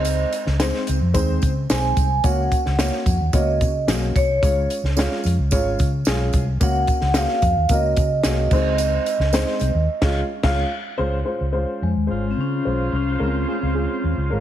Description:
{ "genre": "uptempo 1960s-style soul", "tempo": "110 BPM", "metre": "4/4", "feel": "straight", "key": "Db major", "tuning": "A4 = 440 Hz", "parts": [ { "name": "vibraphone with soft mallets", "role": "melody", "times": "0.0-14.0 s", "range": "Ab3 to Ab5", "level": "-23 LUFS", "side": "right 1 dB", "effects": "none" }, { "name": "dark upright piano", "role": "accompaniment", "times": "0.0-14.4 s", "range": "Ab3 to F5", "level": "-25 LUFS", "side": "left 1 dB", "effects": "none" }, { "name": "vintage muted fingered electric bass", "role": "bass", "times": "0.0-14.4 s", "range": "Ab1 to Db3", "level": "-22 LUFS", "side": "equal", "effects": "none" }, { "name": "tambourine", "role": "percussion", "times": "0.0-9.7 s", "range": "none", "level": "-36 LUFS", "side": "right 7 dB", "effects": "none" }, { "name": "compact cocktail drum kit", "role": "drums", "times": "0.1-10.6 s", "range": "crash cymbal, hi-hat, kick drum, snare drum", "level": "-23 LUFS", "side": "equal", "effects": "none" }, { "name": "mellow horn section", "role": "second line", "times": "12.1-14.4 s", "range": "Db3 to C5", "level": "-28 LUFS", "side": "right 2 dB", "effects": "none" } ], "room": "light reverb", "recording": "heavily compressed radio sound", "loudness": "-18 LUFS", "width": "side -11 dB against mid", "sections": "0.0-11.0 A section; 11.0-14.4 B section", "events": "band accent 9.9-11.0", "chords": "0.0 Ab/Db; 2.2 Gb/Db; 4.4 Db; 6.6 Gb/Db; 8.5 Ab/Db; 9.9 Db; 11.0 Dbmaj7" }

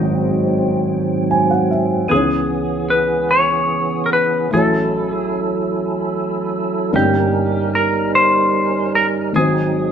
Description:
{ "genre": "slow gospel", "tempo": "50 BPM (dotted quarters)", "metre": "6/8", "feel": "straight", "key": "C# minor", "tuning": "A4 = 440 Hz", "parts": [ { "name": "dark upright piano", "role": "accompaniment", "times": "0.0-9.9 s", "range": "G1 to G#5", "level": "-21 LUFS", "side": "left 2 dB", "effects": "none" }, { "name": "percussive tonewheel organ", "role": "sustained chords", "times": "0.0-9.9 s", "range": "G#2 to A#4", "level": "-19 LUFS", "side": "right 3 dB", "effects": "slow rotary speaker, chorus vibrato" }, { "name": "clean lap steel guitar", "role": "melody", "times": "2.1-9.9 s", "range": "G4 to C#5", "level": "-17 LUFS", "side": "left 1 dB", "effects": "none" } ], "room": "wet stone room reverb, RT60 1.1 s", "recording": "band playing live in one room", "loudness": "-15 LUFS", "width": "side -8 dB against mid", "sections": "0.0-2.1 A section; 2.1-9.9 B section", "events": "tonewheel organ solo 0.0-2.1; upright piano fill 0.9-2.1", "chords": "0.0 G#7; 2.1 C#m7; 4.5 A6; 6.9 D#7/G; 9.4 G#7" }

